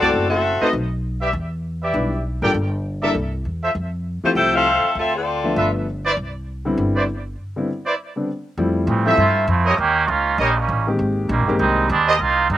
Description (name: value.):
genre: jazz, big band swing.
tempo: 199 BPM.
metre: 4/4.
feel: swing 60% on 8ths.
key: C major.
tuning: A4 = 440 Hz.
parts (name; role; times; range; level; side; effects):
warm saxophone section; melody; 0.0-0.7, 4.3-5.7 s; A3 to G5; -18 LUFS; left 2 dB; slapback echo.
warm concert grand piano; accompaniment; 0.0-11.9 s; D3 to E5; -22 LUFS; left 2 dB; none.
mellow trumpet section; stabs; 0.0-12.2 s; E4 to G5; -20 LUFS; right 1 dB; slapback echo.
upright bass; bass; 0.0-12.6 s; F#1 to A2; -24 LUFS; equal; none.
muted trombone section; second line; 8.9-12.6 s; Eb3 to G4; -18 LUFS; right 4 dB; none.
room: little or no reverb.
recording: recorded outdoors, with no room sound.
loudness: -17 LUFS.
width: side -13 dB against mid.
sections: 0.0-8.6 A section; 8.6-12.6 B section.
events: break 7.4-8.6; trombone section solo 8.6-12.6.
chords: 0.1 F#m7b5; 0.7 Bmadd11; 1.3 Em7; 2.5 Gm; 3.1 C6; 3.8 Fmaj7; 5.0 Dm9; 5.6 G13; 6.2 Cmaj9; 8.6 Fmaj7; 9.8 Eb7; 11.0 Abmaj7.